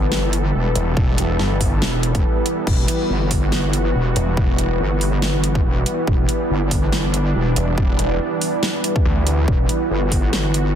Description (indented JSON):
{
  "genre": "heavy wobble dubstep",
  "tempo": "141 BPM",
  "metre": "4/4",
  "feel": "swing 55% on 16ths, half-time",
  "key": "E minor",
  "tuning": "A4 = 439 Hz",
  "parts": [
    { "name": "supersaw pad", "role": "sustained chords", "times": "0.0-10.8 s", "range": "E3 to A4", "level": "-25 LUFS", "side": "right 2 dB", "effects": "sidechain pumping, low-pass filter" },
    { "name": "wobble bass", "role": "bass", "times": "0.0-10.7 s", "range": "E1 to G1", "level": "-20 LUFS", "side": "equal", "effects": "chorus, overdrive" },
    { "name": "deep dark ambient pad", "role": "texture", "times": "0.0-10.8 s", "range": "E4 to B5", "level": "-25 LUFS", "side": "equal", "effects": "chorus, built-in reverb, sidechain pumping" },
    { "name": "dubstep drum kit", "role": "drums", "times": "0.1-10.6 s", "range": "crash cymbal, hi-hat, snare drum", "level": "-24 LUFS", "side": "right 1 dB", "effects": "none" },
    { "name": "snarling distorted saw bass", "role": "bass", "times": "0.8-4.8, 7.6-9.5 s", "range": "E1 to D2", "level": "-20 LUFS", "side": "equal", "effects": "overdrive" },
    { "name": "electronic kick drum", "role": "drums", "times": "1.0-10.2 s", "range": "none", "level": "-20 LUFS", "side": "equal", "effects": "none" }
  ],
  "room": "little or no reverb",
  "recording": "dense, heavily limited modern master",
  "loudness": "-16 LUFS",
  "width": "side -9 dB against mid",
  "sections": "0.0-10.8 A section",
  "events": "none",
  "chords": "0.0 Em"
}